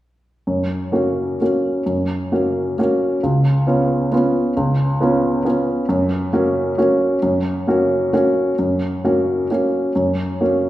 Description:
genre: classical, piano waltz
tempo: 122-143 BPM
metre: 3/4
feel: rubato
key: F# major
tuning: A4 = 440 Hz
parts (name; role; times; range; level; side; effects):
- warm upright piano; solo; 0.5-10.7 s; C#2 to F#4; -16 LUFS; equal; none
room: wet recital hall reverb, RT60 1.4 s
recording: heard from further back in the room, faint mains hum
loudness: -16 LUFS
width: side -14 dB against mid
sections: 0.5-10.7 A section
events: none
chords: 0.5 F#; 3.2 C#7; 5.9 F#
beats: | 0.46 0.92 1.40 | 1.86 2.31 2.78 | 3.23 3.67 4.12 | 4.56 5.00 5.45 | 5.88 6.32 6.77 | 7.22 7.66 8.12 | 8.57 9.02 9.49 | 9.95 10.40

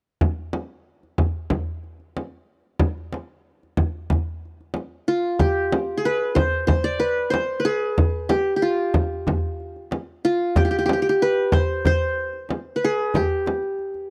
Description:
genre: Arabic maqam ensemble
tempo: 93 BPM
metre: 4/4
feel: straight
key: G maqam hijaz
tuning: A4 = 439 Hz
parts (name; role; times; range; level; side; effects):
- darbuka; percussion; 0.2-14.0 s; none; -28 LUFS; equal; none
- frame drum; percussion; 0.2-13.6 s; none; -25 LUFS; equal; none
- qanun; melody; 5.1-14.1 s; F4 to D5; -24 LUFS; equal; none
room: studio ambience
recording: dry, close 1970s-style studio recording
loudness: -23 LUFS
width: mono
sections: 0.2-5.4 A section; 5.4-14.1 B section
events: none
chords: none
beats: | 0.22 0.86 1.51 2.16 | 2.81 3.45 4.10 4.75 | 5.39 6.04 6.69 7.33 | 7.98 8.63 9.27 9.92 | 10.56 11.21 11.85 12.50 | 13.14 13.79

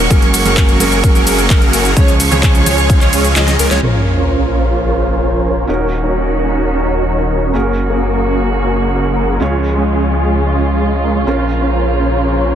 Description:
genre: EDM, festival progressive house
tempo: 129 BPM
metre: 4/4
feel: straight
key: Bb minor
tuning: A4 = 440 Hz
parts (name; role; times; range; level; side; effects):
- felt-muted upright piano; accompaniment; 0.0-12.6 s; Db3 to Db5; -21 LUFS; right 4 dB; sidechain pumping, digital delay
- rich chamber string section; sustained chords; 0.0-12.6 s; Db3 to Db6; -21 LUFS; right 2 dB; sidechain pumping, low-pass filter
- plucky unison lead; arpeggios; 0.0-3.8 s; Bb4 to Eb5; -22 LUFS; left 1 dB; ensemble chorus, vintage 12-bit sampler grit, sidechain pumping, digital delay
- supersaw chords; riff; 0.0-12.6 s; Ab3 to Eb5; -17 LUFS; right 1 dB; lush chorus, sidechain pumping, low-pass filter, digital delay
- wide detuned saw bass; bass; 0.0-12.6 s; Eb1 to Db2; -17 LUFS; equal; chorus, sidechain pumping
- big-room dance drum kit; drums; 0.1-3.8 s; handclaps, hi-hat, ride cymbal, shaker, snare drum; -19 LUFS; left 1 dB; overdrive, low-pass filter on hats, low-pass filter on perc, low-pass filter on cymbals, low-pass filter on snare
- electronic kick drum; drums; 0.1-3.0 s; none; -11 LUFS; left 1 dB; overdrive
- sub drop; sound effects; 3.8-5.7 s; none; -19 LUFS; left 1 dB; none
room: light reverb, digital ambience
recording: dense, heavily limited modern master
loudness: -11 LUFS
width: side -9 dB against mid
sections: 0.0-3.8 A section; 3.8-12.6 B section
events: drop 0.0-3.8; kick drops out 3.4-3.8; drum fill 3.4-3.8; band accent 3.7; impact 3.8-5.7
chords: 0.1 Gbadd9; 2.0 Db; 3.8 Bbmadd9; 5.7 Ebm7; 7.5 Gbadd9; 9.4 Db; 11.3 Bbmadd9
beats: | 0.11 0.57 1.04 1.50 | 1.97 2.43 2.90 3.36 | 3.83 4.29 4.76 5.22 | 5.69 6.15 6.62 7.08 | 7.55 8.01 8.48 8.94 | 9.41 9.87 10.34 10.80 | 11.27 11.73 12.20

